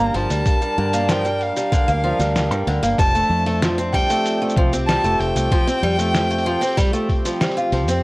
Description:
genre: folktronica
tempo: 95 BPM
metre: 4/4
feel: straight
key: F major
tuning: A4 = 439 Hz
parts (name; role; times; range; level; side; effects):
- dark violin; melody; 0.0-7.4 s; F5 to Bb5; -23 LUFS; equal; cassette tape, analog delay
- pedal harmonium; sustained chords; 0.0-8.0 s; F3 to Bb4; -25 LUFS; right 1 dB; cassette tape
- picked old ladder-braced acoustic guitar; arpeggios; 0.0-8.0 s; D3 to F4; -22 LUFS; equal; cassette tape, analog delay
- fingered electric bass; bass; 0.0-8.0 s; F1 to G2; -23 LUFS; equal; none
- lo-fi sampler-style drum kit; drums; 0.1-8.0 s; hi-hat, shaker, snare drum; -26 LUFS; equal; cassette tape
- electronic kick drum; drums; 0.5-7.2 s; none; -18 LUFS; equal; cassette tape
room: small room ambience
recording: home recording on cassette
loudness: -16 LUFS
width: side -22 dB against mid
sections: 0.0-8.0 A section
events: none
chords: 0.0 Gm7; 3.0 Fadd9

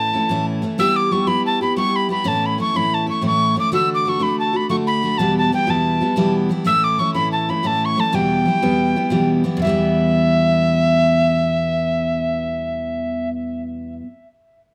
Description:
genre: celtic folk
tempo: 122 BPM (dotted quarters)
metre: 9/8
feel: straight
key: E dorian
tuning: A4 = 441 Hz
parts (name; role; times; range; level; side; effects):
- breathy bright tin whistle; melody; 0.0-13.3 s; E5 to E6; -22 LUFS; equal; tape echo
- picked steel-string acoustic guitar; accompaniment; 0.0-14.1 s; E2 to G4; -22 LUFS; equal; none
room: moderate small room reverb, RT60 0.5 s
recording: none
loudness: -19 LUFS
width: mono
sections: 0.0-9.6 A section; 9.6-12.5 B section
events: none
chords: 0.0 A; 0.8 Em/G; 2.2 A; 3.7 D; 5.2 Em; 6.7 A; 8.1 Em

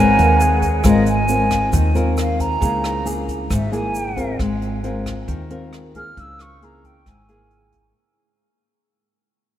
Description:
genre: bossa nova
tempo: 135 BPM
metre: 4/4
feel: straight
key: Ab major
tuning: A4 = 441 Hz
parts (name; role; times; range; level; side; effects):
- silver concert flute; melody; 0.0-7.9 s; Eb5 to F6; -21 LUFS; right 1 dB; tape echo
- silver concert flute; second line; 0.0-0.8 s; Ab4 to Bb4; -28 LUFS; right 1 dB; tape echo
- nylon-string guitar; accompaniment; 0.0-7.9 s; Ab2 to Bb4; -21 LUFS; left 2 dB; none
- upright bass; bass; 0.0-7.9 s; Ab1 to Eb2; -21 LUFS; equal; none
- jazz brush drum kit; drums; 0.2-7.8 s; hi-hat, kick drum, rim click; -24 LUFS; equal; none
- egg shaker; percussion; 0.2-4.4 s; none; -37 LUFS; right 5 dB; none
room: wet cathedral reverb, RT60 6.0 s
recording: dreamy mix soaked in reverb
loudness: -16 LUFS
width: side -11 dB against mid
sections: 0.8-7.9 A section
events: fade-out 0.8-7.9; flute solo 0.8-7.9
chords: 0.0 Abadd9; 0.8 Ab69; 2.6 Dbm6; 4.4 Ab69; 6.2 Dbm6

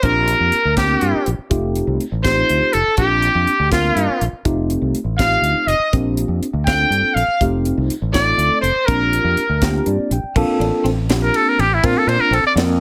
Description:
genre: electric jazz fusion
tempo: 81 BPM (dotted quarters)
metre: 6/8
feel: straight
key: Bb major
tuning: A4 = 440 Hz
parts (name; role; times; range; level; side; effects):
- trumpet with metal mute; melody; 0.0-12.5 s; E4 to G5; -19 LUFS; equal; plate reverb
- cranked stack guitar; second line; 0.0-9.9 s; F4 to G5; -26 LUFS; equal; overdrive, plate reverb
- tine electric piano; accompaniment; 0.0-12.8 s; A3 to G5; -24 LUFS; equal; phaser, plate reverb
- fretless electric bass; bass; 0.0-12.8 s; F1 to Bb2; -23 LUFS; equal; none
- tight funk drum kit; drums; 0.0-12.7 s; crash cymbal, hi-hat, kick drum, ride cymbal, snare drum; -24 LUFS; equal; none
- electric guitar at the edge of break-up; stabs; 10.4-12.8 s; C4 to D4; -28 LUFS; equal; ensemble chorus, plate reverb
room: moderate studio reverb, RT60 0.5 s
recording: none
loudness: -17 LUFS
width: mono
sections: 0.0-10.4 A section; 10.4-12.8 B section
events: tine electric piano fill 9.6-10.4; muted trumpet solo 10.4-12.8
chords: 0.0 Bb69; 1.5 F7; 3.0 Bb69; 4.5 F7; 5.9 Bb69; 7.4 F7; 8.9 Bb69; 10.4 Bbmaj9

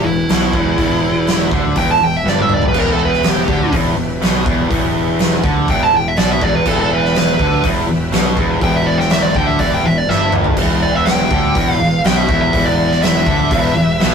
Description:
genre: blues rock power trio and southern rock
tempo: 123 BPM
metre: 4/4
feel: straight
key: E minor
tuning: A4 = 439 Hz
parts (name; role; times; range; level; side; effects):
- dark smooth lead guitar; melody; 0.0-14.1 s; E4 to A5; -17 LUFS; right 2 dB; overdrive
- overdriven tonewheel organ; sustained chords; 0.0-14.1 s; E4 to E5; -31 LUFS; equal; none
- distorted electric guitar; riff; 0.0-14.1 s; E2 to D3; -18 LUFS; equal; overdrive
- fuzz fingered electric bass; bass; 0.0-14.1 s; E1 to D2; -20 LUFS; left 1 dB; overdrive
- huge arena drum kit; drums; 0.3-14.1 s; crash cymbal, hi-hat, kick drum, snare drum, toms; -18 LUFS; equal; none
room: moderate stone room reverb, RT60 1.0 s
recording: rough rehearsal-room recording, warm saturation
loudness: -12 LUFS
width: side -6 dB against mid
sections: 0.0-14.1 A section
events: lead electric guitar solo 0.0-14.1; drum fill 2.3-2.7, 10.1-10.6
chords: 0.0 Em

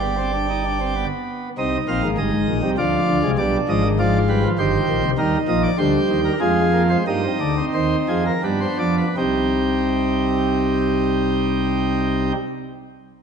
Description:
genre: classical, baroque-style 4-part fugue for pipe organ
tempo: 78-101 BPM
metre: 3/4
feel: straight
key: C minor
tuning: A4 = 440 Hz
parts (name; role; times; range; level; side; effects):
- pipe organ, principal chorus; solo; 0.0-12.4 s; G1 to F5; -18 LUFS; equal; none
room: wet concert hall reverb, RT60 2.0 s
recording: nothing above 10.9 kHz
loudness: -18 LUFS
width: side -6 dB against mid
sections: 0.0-1.6 A section; 1.6-9.2 B section; 9.2-13.2 C section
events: slowing down 4.3-9.2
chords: 0.0 G; 1.6 Cm; 2.8 Dm7b5; 3.4 G; 4.6 Cm/G; 5.2 Eb; 6.4 Fmadd11; 7.1 Cm; 8.4 G7; 9.2 Cm

